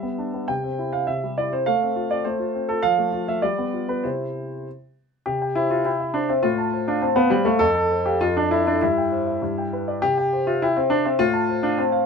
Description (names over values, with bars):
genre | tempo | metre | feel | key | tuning
classical-period piano sonatina | 101 BPM | 2/4 | straight | C major | A4 = 445 Hz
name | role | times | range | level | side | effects
warm grand piano | solo | 0.0-12.1 s | F2 to A5 | -20 LUFS | equal | none
room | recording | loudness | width
light reverb | minimal, uncompressed stereo recording | -20 LUFS | side -5 dB against mid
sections
0.0-5.3 A section; 5.3-12.1 B section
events
none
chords
0.5 C; 1.7 F/A; 2.8 F; 3.4 G7; 4.0 C; 6.4 F/A; 7.6 F; 8.2 Dm/F; 8.8 C/G; 9.4 G; 10.0 C; 11.2 F/A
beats
| 0.48 1.07 | 1.66 2.25 | 2.83 3.43 | 4.04 4.66 | 5.27 5.86 | 6.44 7.02 | 7.61 8.20 | 8.80 9.41 | 10.01 10.61 | 11.20 11.79